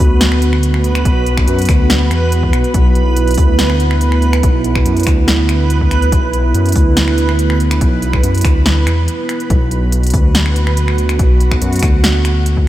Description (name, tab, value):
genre	deep dubstep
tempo	142 BPM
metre	4/4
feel	half-time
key	B minor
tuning	A4 = 440 Hz
part	dark analog pad	sustained chords	0.0-12.7 s	B3 to F#4	-19 LUFS	right 3 dB	chorus
part	dark detuned saw bass	bass	0.0-12.7 s	B1 to F#2	-14 LUFS	equal	none
part	deep house drum kit	drums	0.0-12.5 s	finger snaps, hi-hat, snare drum	-20 LUFS	equal	none
part	electronic kick drum	drums	0.0-12.7 s	none	-14 LUFS	equal	none
part	backwards swelling texture	texture	0.0-12.7 s	F#4 to B4	-22 LUFS	right 3 dB	built-in reverb
room	light reverb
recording	none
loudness	-10 LUFS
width	side -14 dB against mid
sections	0.0-12.7 A section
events	break 9.1-9.5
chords	0.0 B5